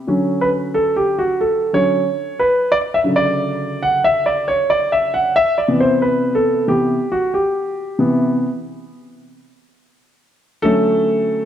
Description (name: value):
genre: hip hop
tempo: 91 BPM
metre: 4/4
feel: swing 58% on 16ths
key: D major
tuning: A4 = 440 Hz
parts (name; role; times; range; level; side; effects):
- dark concert grand piano; solo; 0.0-11.5 s; C3 to F#5; -15 LUFS; equal; slapback echo
room: moderate echo chamber reverb, RT60 2.1 s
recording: none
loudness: -15 LUFS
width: side -10 dB against mid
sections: 0.1-10.6 A section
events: grand piano solo 0.1-10.6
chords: 0.1 Dmaj7; 5.4 Cmaj7; 10.6 Dmaj7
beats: | 0.08 0.74 1.40 2.06 | 2.72 3.38 4.04 4.70 | 5.36 6.02 6.68 7.34 | 8.00 8.66 9.31 9.97 | 10.63 11.29